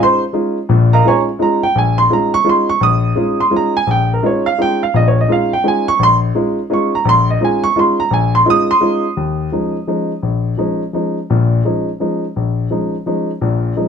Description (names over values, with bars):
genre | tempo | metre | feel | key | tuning
jazz | 170 BPM | 3/4 | swing 62% on 8ths | unclear | A4 = 436 Hz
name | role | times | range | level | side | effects
warm baby grand piano | solo | 0.0-13.9 s | Bb1 to Eb6 | -12 LUFS | equal | none
room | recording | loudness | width
light reverb | none | -12 LUFS | side -7 dB against mid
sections
0.0-9.2 A section; 9.2-13.9 B section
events
none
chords
0.0 Eb9sus4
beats
0.33 | 0.69 1.04 1.39 | 1.75 2.10 2.45 | 2.81 3.16 3.51 | 3.87 4.22 4.58 | 4.93 5.28 5.63 | 5.99 6.34 6.70 | 7.05 7.40 7.75 | 8.11 8.46 8.81 | 9.17 9.52 9.88 | 10.23 10.58 10.94 | 11.29 11.64 12.00 | 12.35 12.71 13.06 | 13.41 13.77